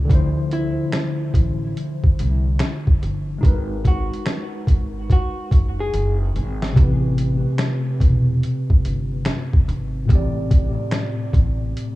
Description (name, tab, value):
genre	lo-fi hip hop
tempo	72 BPM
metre	4/4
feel	swing 65% on 16ths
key	A minor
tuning	A4 = 439 Hz
part	tine electric piano	accompaniment	0.0-12.0 s	A2 to D5	-24 LUFS	left 1 dB	medium stereo tremolo, cassette tape, low-pass filter, dub echo
part	upright bass	bass	0.0-11.7 s	E1 to D2	-22 LUFS	equal	none
part	boom bap sampler-style drum kit	drums	0.1-12.0 s	finger snaps, hi-hat, kick drum, snare drum	-16 LUFS	equal	none
part	archtop guitar, miked and amplified	melody	0.5-6.2 s	E4 to G#4	-30 LUFS	left 1 dB	low-pass filter, dub echo
room	digital ambience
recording	echo-heavy mix, small room ambience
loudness	-17 LUFS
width	side -18 dB against mid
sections	0.0-12.0 A section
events	drum fill 5.9-6.8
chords	0.1 Dm9; 3.4 G#m9; 6.8 Am9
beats	| 0.09 0.93 1.76 2.59 | 3.43 4.26 5.09 5.93 | 6.76 7.59 8.43 9.26 | 10.09 10.93 11.76